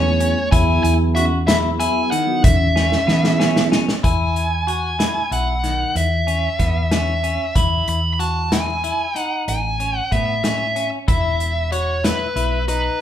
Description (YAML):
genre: progressive instrumental, band music in an uneven meter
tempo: 187 BPM (eighths)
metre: 11/8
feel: straight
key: E major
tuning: A4 = 440 Hz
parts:
  - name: dark smooth lead guitar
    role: melody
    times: 0.0-13.0 s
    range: B4 to B5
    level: -21 LUFS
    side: right 1 dB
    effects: overdrive
  - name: vibraphone with medium mallets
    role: second line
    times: 0.0-3.7 s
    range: A3 to E4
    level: -26 LUFS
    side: right 1 dB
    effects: none
  - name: mellow tonewheel organ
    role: accompaniment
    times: 0.0-3.9 s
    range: F#3 to G#4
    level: -24 LUFS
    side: right 5 dB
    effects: fast rotary speaker
  - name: clean electric guitar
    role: arpeggios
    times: 0.0-13.0 s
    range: D#3 to F#4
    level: -25 LUFS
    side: left 5 dB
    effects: spring reverb
  - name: hollow-body short-scale fingered electric bass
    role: bass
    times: 0.0-12.9 s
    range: E1 to E3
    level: -22 LUFS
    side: equal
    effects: none
  - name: loose indie drum kit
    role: drums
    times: 0.2-12.8 s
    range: hi-hat, kick drum, snare drum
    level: -20 LUFS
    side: equal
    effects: none
room: moderate large studio reverb, RT60 0.8 s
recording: band playing live in one room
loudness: -16 LUFS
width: side -10 dB against mid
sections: 0.0-4.0 A section; 4.0-13.0 B section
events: drum fill 2.8-4.0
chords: 0.0 Amaj7/E; 0.5 E; 2.4 C#m7/E; 4.0 E; 6.0 C#m7/E; 7.6 E; 9.5 Amaj7; 11.1 E5